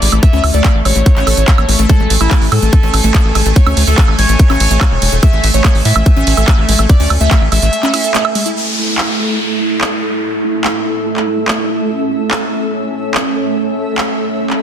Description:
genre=psychedelic trance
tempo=144 BPM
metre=4/4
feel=straight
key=A major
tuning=A4 = 437 Hz
part: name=overdriven synth lead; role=melody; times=0.0-8.5 s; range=E4 to E5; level=-19 LUFS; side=left 1 dB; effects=phaser, sidechain pumping, dub echo
part: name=bubbling stepped-filter texture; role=sustained chords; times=0.0-14.6 s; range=A3 to G#5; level=-19 LUFS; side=right 2 dB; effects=chorus, built-in reverb, sidechain pumping
part: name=wide unison pluck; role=riff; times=0.0-8.5 s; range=G#3 to Bb4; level=-20 LUFS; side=moving between left 6 dB and right 5 dB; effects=auto-pan, sidechain pumping, dub echo
part: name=tight sequencer bass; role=bass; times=0.0-7.7 s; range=E1 to A2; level=-13 LUFS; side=equal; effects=none
part: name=techno drum kit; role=drums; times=0.0-14.6 s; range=handclaps, hi-hat, ride cymbal, woodblock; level=-17 LUFS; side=right 2 dB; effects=none
part: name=electronic kick drum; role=drums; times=0.2-7.4 s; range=none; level=-9 LUFS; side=equal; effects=overdrive
part: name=downlifter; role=sound effects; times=8.6-11.9 s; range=none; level=-21 LUFS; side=equal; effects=none
part: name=granular cloud pad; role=texture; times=9.4-14.6 s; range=A3 to E6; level=-22 LUFS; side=equal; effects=built-in reverb, sidechain pumping
room=light reverb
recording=dense, heavily limited modern master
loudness=-10 LUFS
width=side -9 dB against mid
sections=0.0-8.6 A section; 8.6-14.6 B section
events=drop 0.0-8.6; break 7.7-8.6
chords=0.0 A5

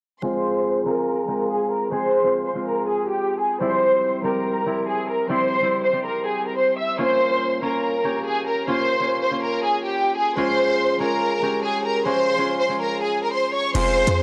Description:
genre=hip hop, drill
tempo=142 BPM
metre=4/4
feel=half-time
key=F harmonic minor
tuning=A4 = 440 Hz
part: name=warm symphonic violin section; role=melody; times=0.2-14.2 s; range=G4 to E6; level=-23 LUFS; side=equal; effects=low-pass filter
part: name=concert harp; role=accompaniment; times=0.2-14.2 s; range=G3 to Ab4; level=-27 LUFS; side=equal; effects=low-pass filter
part: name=short 808-style bass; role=bass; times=13.7-14.2 s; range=F1 to F2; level=-24 LUFS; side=equal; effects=none
part: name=drill drum kit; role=drums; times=13.7-14.2 s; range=crash cymbal, hi-hat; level=-34 LUFS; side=equal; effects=vintage 12-bit sampler grit
room=light reverb, small room reverb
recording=dry, gritty hardware recording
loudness=-22 LUFS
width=mono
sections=0.2-13.7 A section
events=filter sweep 0.2-13.7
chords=0.2 Fm; 3.6 C; 7.0 Bbm; 10.4 Db

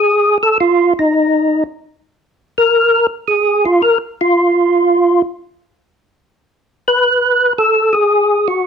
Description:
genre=jazz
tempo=112 BPM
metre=4/4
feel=swing 68% on 8ths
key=unclear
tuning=A4 = 438 Hz
part: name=percussive tonewheel organ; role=solo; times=0.0-8.7 s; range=Eb4 to B4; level=-11 LUFS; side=equal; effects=slow rotary speaker, overdrive, chorus vibrato
room=moderate studio reverb, RT60 0.7 s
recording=close, detailed microphones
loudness=-11 LUFS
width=side -7 dB against mid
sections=0.0-8.7 A section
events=none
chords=none

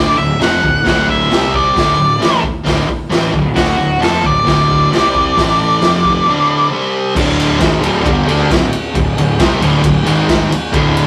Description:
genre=garage rock duo or trio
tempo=133 BPM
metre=4/4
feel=straight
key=unclear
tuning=A4 = 441 Hz
part: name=octave-fuzz lead guitar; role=melody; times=0.0-6.7 s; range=F#4 to F#5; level=-16 LUFS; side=equal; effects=distortion
part: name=fuzz guitar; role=riff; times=0.0-11.1 s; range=D2 to D4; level=-18 LUFS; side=equal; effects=distortion
part: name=fuzz picked electric bass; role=bass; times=0.0-11.1 s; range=D1 to D2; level=-21 LUFS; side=equal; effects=overdrive
part: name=raw garage drum kit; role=drums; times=0.4-11.1 s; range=crash cymbal, hi-hat, kick drum, ride cymbal, snare drum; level=-19 LUFS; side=equal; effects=none
room=wet studio reverb, RT60 0.6 s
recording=rough rehearsal-room recording, warm saturation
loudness=-13 LUFS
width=mono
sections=0.0-7.2 A section; 7.2-11.1 B section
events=none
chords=0.0 D; 1.3 C5; 1.8 D5; 4.9 C5; 5.4 A5; 5.8 F5; 6.3 D5; 6.7 C5; 7.2 D5; 10.1 G#5; 10.5 D5

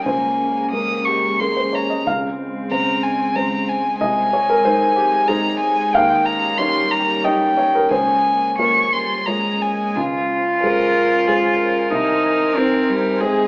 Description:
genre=neoclassical piano and strings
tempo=92 BPM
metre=3/4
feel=rubato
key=unclear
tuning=A4 = 440 Hz
part: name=rich violin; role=melody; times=0.0-13.5 s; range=Ab4 to Eb6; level=-18 LUFS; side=equal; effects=none
part: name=felt-muted upright piano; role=accompaniment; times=0.0-13.5 s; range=C2 to F5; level=-21 LUFS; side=equal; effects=none
part: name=analog string pad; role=sustained chords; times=0.0-13.5 s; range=Db3 to Ab5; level=-30 LUFS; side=equal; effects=ensemble chorus
part: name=rich cello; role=second line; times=0.1-13.5 s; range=G3 to F4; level=-22 LUFS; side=equal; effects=none
room=moderate large studio reverb, RT60 1.1 s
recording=band playing live in one room, AM radio sound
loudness=-15 LUFS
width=side -29 dB against mid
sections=0.0-10.0 A section; 10.0-13.5 A section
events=none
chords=0.1 Bbm7/Db; 2.1 Dbmaj7; 4.0 Ab/C; 5.9 Eb7; 7.9 Bbm7/Db; 10.0 Dbmaj7; 11.9 Ab/C

